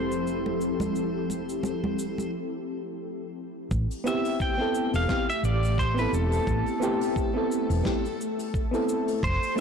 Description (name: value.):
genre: sunset chillout.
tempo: 87 BPM.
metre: 4/4.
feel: swing 56% on 16ths.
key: A minor.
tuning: A4 = 440 Hz.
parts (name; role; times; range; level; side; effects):
pedal steel guitar; melody; 0.0-9.6 s; A4 to G5; -32 LUFS; equal; tape echo.
mellow FM electric piano; accompaniment; 0.0-9.6 s; A3 to A4; -30 LUFS; moving between left 6 dB and right 1 dB; chorus, auto-pan, low-pass filter, tape echo.
ethereal airy pad; sustained chords; 0.0-9.6 s; E3 to A4; -31 LUFS; equal; ensemble chorus, built-in reverb.
hollow-body short-scale fingered electric bass; bass; 0.0-9.4 s; E1 to A1; -28 LUFS; equal; transformer saturation.
soft brush drum kit; drums; 0.1-9.6 s; cabasa, hi-hat, snare drum; -40 LUFS; left 1 dB; none.
congas; percussion; 0.5-2.3 s; none; -33 LUFS; right 2 dB; none.
electronic kick drum; drums; 3.7-9.4 s; none; -30 LUFS; right 1 dB; none.
room: light reverb, small room ambience.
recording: blown-out, overdriven recording, overdrive.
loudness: -25 LUFS.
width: side -6 dB against mid.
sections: 0.0-3.7 A section; 3.7-9.6 B section.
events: filter sweep on ambient pad 0.0-3.7; break 2.3-3.7.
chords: 0.0 Fmaj7; 3.7 Am7.